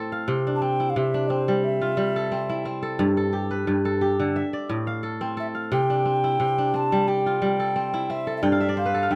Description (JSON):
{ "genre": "west african traditional", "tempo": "88 BPM", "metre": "4/4", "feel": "swing 53% on 16ths", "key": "C major", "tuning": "A4 = 442 Hz", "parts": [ { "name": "kora", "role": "arpeggios", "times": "0.0-9.2 s", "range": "G2 to G5", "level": "-25 LUFS", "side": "equal", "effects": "none" }, { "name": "mellow hollow alto ocarina", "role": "melody", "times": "0.6-9.2 s", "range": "C5 to A5", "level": "-28 LUFS", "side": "equal", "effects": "none" } ], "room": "light reverb", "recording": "close, detailed microphones", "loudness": "-24 LUFS", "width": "mono", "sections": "0.0-9.2 A section", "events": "kora fill 8.4-9.2", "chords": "0.3 C; 3.0 G; 4.4 Am; 5.7 C; 8.4 G5" }